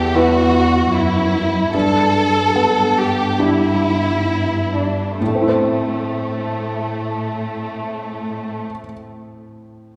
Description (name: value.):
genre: cinematic, emotional film score for orchestra.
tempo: 63-79 BPM.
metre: 4/4.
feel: rubato.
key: A dorian.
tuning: A4 = 440 Hz.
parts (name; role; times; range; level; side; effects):
warm symphonic violin section; second line; 0.0-8.6 s; A3 to A4; -22 LUFS; equal; none.
felt-muted upright piano; accompaniment; 0.0-10.0 s; E2 to C5; -23 LUFS; equal; none.
warm symphonic cello section; bass; 0.0-8.6 s; E2 to A2; -24 LUFS; equal; none.
room: wet concert hall reverb, RT60 2.4 s.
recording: recorded in a church or concert hall.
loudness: -18 LUFS.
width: mono.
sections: 0.0-5.2 A section; 5.2-8.9 B section.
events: slowing down 0.0-5.2.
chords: 0.0 E5; 1.7 G; 5.2 Am.